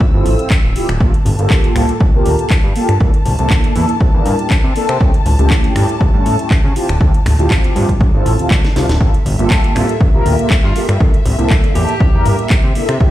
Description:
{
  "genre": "filtered disco house",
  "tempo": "120 BPM",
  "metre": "4/4",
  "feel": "swing 53% on 16ths",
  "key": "G dorian",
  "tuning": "A4 = 441 Hz",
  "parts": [
    { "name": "rich studio string section", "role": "sustained chords", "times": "0.0-13.1 s", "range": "E5 to E6", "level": "-25 LUFS", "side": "left 5 dB", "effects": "sidechain pumping, low-pass filter" },
    { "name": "fat analog bass", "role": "bass", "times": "0.0-13.1 s", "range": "D1 to C#3", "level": "-16 LUFS", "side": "equal", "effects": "sidechain pumping, low-pass filter" },
    { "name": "electronic kick drum", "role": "drums", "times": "0.0-13.1 s", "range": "none", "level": "-13 LUFS", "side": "equal", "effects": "overdrive" },
    { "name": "tube shaker and congas", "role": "percussion", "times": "0.0-13.1 s", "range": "none", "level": "-24 LUFS", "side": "equal", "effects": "none" },
    { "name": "mellow synth brass", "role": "accompaniment", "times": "0.1-13.1 s", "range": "A3 to Bb4", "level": "-19 LUFS", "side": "equal", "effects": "chorus, phaser, sidechain pumping, low-pass filter" },
    { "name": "house drum kit", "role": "drums", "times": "0.3-13.0 s", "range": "finger snaps, handclaps, hi-hat, snare drum", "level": "-23 LUFS", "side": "equal", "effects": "overdrive, sidechain pumping on cymbals, sidechain pumping on hats" },
    { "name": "warm horn section", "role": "melody", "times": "10.6-12.5 s", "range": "F4 to G4", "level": "-25 LUFS", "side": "right 3 dB", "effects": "sidechain pumping, low-pass filter, tape echo" }
  ],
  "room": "digital ambience",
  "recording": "played on a big sound system in a bare room, stone room reverb",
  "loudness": "-11 LUFS",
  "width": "side -14 dB against mid",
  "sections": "0.0-13.1 A section",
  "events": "filter sweep 0.0-13.1; drum fill 8.6-9.0",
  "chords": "0.0 Dm11; 1.0 Gm9; 3.0 C13; 5.0 A7/C#; 6.8 Dm11; 9.0 Gm9; 11.0 C13"
}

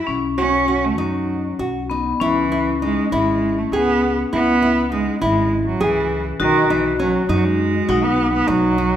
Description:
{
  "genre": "contemporary instrumental, chamber music in an uneven meter",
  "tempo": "200 BPM (eighths)",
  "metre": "7/8",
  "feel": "straight",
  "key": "unclear",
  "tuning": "A4 = 438 Hz",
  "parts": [
    { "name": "rich cello", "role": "melody", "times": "0.0-9.0 s", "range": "D#3 to C#4", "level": "-20 LUFS", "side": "right 3 dB", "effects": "none" },
    { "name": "vibraphone with hard mallets", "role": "second line", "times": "0.0-9.0 s", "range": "B3 to F#4", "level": "-23 LUFS", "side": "left 6 dB", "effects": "none" },
    { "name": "upright bass", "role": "bass", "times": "0.1-9.0 s", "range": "G#1 to F#2", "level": "-26 LUFS", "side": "equal", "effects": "none" },
    { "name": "nylon-string guitar", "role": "arpeggios", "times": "0.4-9.0 s", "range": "C#4 to G#4", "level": "-22 LUFS", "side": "equal", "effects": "none" }
  ],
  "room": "wet recital hall reverb, RT60 1.7 s",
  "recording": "none",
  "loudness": "-16 LUFS",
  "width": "side -10 dB against mid",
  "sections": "0.0-2.2 A section; 2.2-9.0 B section",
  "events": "none",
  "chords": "0.1 B; 2.2 C#m7; 6.4 B"
}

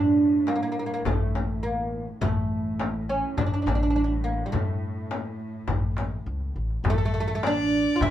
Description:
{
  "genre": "Arabic maqam ensemble",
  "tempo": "103 BPM",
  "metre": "4/4",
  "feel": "straight",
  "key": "unclear",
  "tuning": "A4 = 440 Hz",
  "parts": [
    { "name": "oud", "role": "melody", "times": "0.0-8.1 s", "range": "G3 to F4", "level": "-26 LUFS", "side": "right 2 dB", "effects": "none" },
    { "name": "upright bass", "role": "bass", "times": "0.0-8.1 s", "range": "A1 to A2", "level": "-30 LUFS", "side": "left 1 dB", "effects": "none" },
    { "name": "muted studio cello section", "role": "drone", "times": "0.0-6.9 s", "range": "A2", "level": "-38 LUFS", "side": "equal", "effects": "none" },
    { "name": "darbuka", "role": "percussion", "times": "0.0-8.1 s", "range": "none", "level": "-30 LUFS", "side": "left 1 dB", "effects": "none" },
    { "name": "frame drum", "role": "percussion", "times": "0.5-8.1 s", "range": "none", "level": "-31 LUFS", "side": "left 4 dB", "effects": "none" },
    { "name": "rich violin", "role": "second line", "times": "6.8-8.1 s", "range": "A4 to E5", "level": "-30 LUFS", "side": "left 4 dB", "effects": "none" }
  ],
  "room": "wet small room reverb, RT60 0.5 s",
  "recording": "heard from further back in the room",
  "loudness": "-24 LUFS",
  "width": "side -12 dB against mid",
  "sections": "0.0-6.9 A section; 6.9-8.1 B section",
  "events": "none",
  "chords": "none"
}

